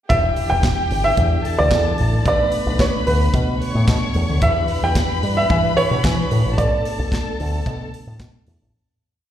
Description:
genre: disco.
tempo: 111 BPM.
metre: 4/4.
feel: straight.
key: E dorian.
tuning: A4 = 445 Hz.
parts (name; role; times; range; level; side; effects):
dark baby grand piano; melody; 0.1-8.2 s; B4 to G5; -21 LUFS; right 1 dB; slapback echo.
dark studio string section; second line; 0.1-8.7 s; G4 to C#6; -27 LUFS; left 2 dB; slapback echo.
percussive tonewheel organ; sustained chords; 0.1-8.7 s; E3 to G4; -29 LUFS; left 1 dB; chorus vibrato, slow rotary speaker.
picked electric bass with an envelope filter; bass; 0.1-8.7 s; E1 to E3; -20 LUFS; equal; none.
tight funk drum kit; drums; 0.1-8.6 s; handclaps, hi-hat, kick drum, snare drum; -23 LUFS; equal; slapback echo.
room: little or no reverb.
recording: live gig heard through the venue's PA, recital hall reverb.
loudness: -16 LUFS.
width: side -11 dB against mid.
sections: 0.1-8.7 groove.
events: fade-out 6.6-8.7.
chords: 0.1 Em7; 2.3 Bm7; 4.4 Em7; 6.6 Bm7.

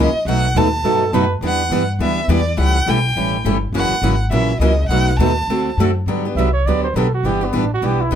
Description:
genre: acoustic string swing (jazz manouche).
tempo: 206 BPM.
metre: 4/4.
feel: swing 58% on 8ths.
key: E minor.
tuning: A4 = 444 Hz.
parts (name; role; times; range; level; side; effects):
rich violin; melody; 0.0-5.7 s; D5 to A5; -21 LUFS; right 1 dB; plate reverb.
picked steel-string acoustic guitar; accompaniment; 0.0-8.2 s; B2 to A4; -21 LUFS; left 5 dB; none.
picked steel-string acoustic guitar; accompaniment; 0.0-8.2 s; B2 to B4; -22 LUFS; right 8 dB; none.
upright bass; bass; 0.0-8.2 s; F#1 to G2; -19 LUFS; left 1 dB; none.
dark trumpet; second line; 0.8-1.4, 6.4-8.2 s; B3 to E5; -21 LUFS; right 5 dB; none.
room: light reverb.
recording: close, detailed microphones.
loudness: -15 LUFS.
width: side -9 dB against mid.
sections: 0.0-6.1 A section; 6.1-8.2 B section.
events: trumpet solo 6.1-8.2.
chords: 0.3 B7; 1.4 Em7; 2.6 A7; 3.7 F#7; 4.9 B7; 5.5 D7; 6.1 Gmaj7; 7.2 Em7.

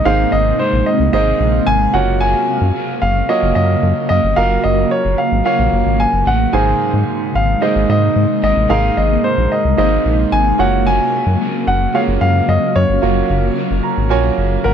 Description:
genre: pop.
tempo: 111 BPM.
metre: 4/4.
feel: straight.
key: unclear.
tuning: A4 = 440 Hz.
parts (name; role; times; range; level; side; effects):
dark baby grand piano; melody; 0.0-14.7 s; Bb4 to Ab5; -17 LUFS; left 1 dB; tape echo.
crunchy overdriven guitar; accompaniment; 0.0-14.7 s; Gb2 to Ab3; -24 LUFS; right 1 dB; lush chorus.
warm grand piano; accompaniment; 0.0-14.7 s; Ab2 to Bb5; -20 LUFS; right 10 dB; none.
shimmering ambient pad; sustained chords; 0.0-14.7 s; C3 to F5; -20 LUFS; left 1 dB; chorus, built-in reverb, phaser.
round analog bass; bass; 0.1-14.7 s; Gb1 to Ab2; -16 LUFS; left 1 dB; none.
room: little or no reverb.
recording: dry, close 1970s-style studio recording.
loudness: -12 LUFS.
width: side -8 dB against mid.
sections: 0.0-14.7 A section.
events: grand piano fill 13.6-14.7.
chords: 0.0 Abadd9; 1.9 Gbmaj7; 6.5 Abadd9; 10.6 Gbmaj7.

